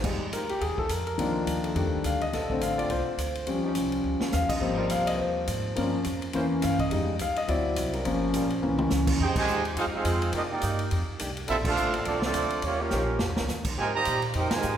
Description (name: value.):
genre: jazz, big band swing.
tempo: 210 BPM.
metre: 4/4.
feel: swing 59% on 8ths.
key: unclear.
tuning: A4 = 439 Hz.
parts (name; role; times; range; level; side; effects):
warm concert grand piano; accompaniment; 0.0-9.2 s; D3 to F5; -27 LUFS; left 2 dB; none.
upright bass; bass; 0.0-14.8 s; G1 to Bb2; -32 LUFS; equal; none.
swinging big-band drum kit; drums; 0.0-14.7 s; crash cymbal, hi-hat, kick drum, ride cymbal, snare drum, toms; -33 LUFS; equal; none.
clear trombone section; sustained chords; 0.3-14.7 s; D3 to C5; -37 LUFS; equal; none.
mellow trumpet section; melody; 9.2-14.8 s; Bb3 to Bb5; -28 LUFS; right 3 dB; none.
mellow trombone section; second line; 9.2-14.8 s; C3 to G4; -33 LUFS; right 1 dB; none.
room: wet concert hall reverb, RT60 1.8 s.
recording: recorded in a church or concert hall.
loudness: -25 LUFS.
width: side -9 dB against mid.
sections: 0.1-9.2 A section; 9.2-14.8 B section.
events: grand piano solo 0.1-9.2; drum fill 4.1, 8.6, 12.9-13.5; band accent 9.3, 11.6, 14.5.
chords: 0.1 Fm9; 1.2 Cm11; 1.8 F13; 2.3 Bbmaj9; 3.5 Eb9; 4.6 Abmaj13; 5.8 Gm7b5; 6.3 C7b9; 6.9 Fm9; 7.5 D7; 8.1 Gm7b5; 8.6 C7b9; 9.2 Fm9; 10.3 Cm11; 10.9 F13; 11.5 Bbmaj9; 12.6 Eb9; 13.8 Abmaj13.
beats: | 0.05 0.34 0.62 0.91 | 1.19 1.48 1.77 2.05 | 2.34 2.62 2.91 3.19 | 3.48 3.77 4.05 4.34 | 4.62 4.91 5.20 5.48 | 5.77 6.05 6.34 6.62 | 6.91 7.20 7.48 7.77 | 8.05 8.34 8.62 8.91 | 9.20 9.48 9.77 10.05 | 10.34 10.62 10.91 11.20 | 11.48 11.77 12.05 12.34 | 12.62 12.91 13.19 13.48 | 13.77 14.05 14.34 14.62.